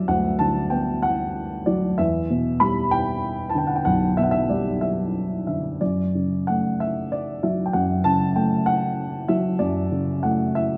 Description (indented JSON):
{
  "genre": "classical, lyrical solo piano",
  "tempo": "63 BPM (dotted quarters)",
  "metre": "6/8",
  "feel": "rubato",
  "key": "D major",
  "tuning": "A4 = 440 Hz",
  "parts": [
    { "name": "dark upright piano", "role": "solo", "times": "0.0-10.8 s", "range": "B1 to B5", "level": "-23 LUFS", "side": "equal", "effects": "none" }
  ],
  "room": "moderate recital hall reverb, RT60 1.5 s",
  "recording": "none",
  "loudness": "-23 LUFS",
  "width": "mono",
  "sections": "0.0-10.8 A section",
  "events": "none",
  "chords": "0.0 Gmaj7; 2.0 Em7; 5.8 Dmaj7/F#"
}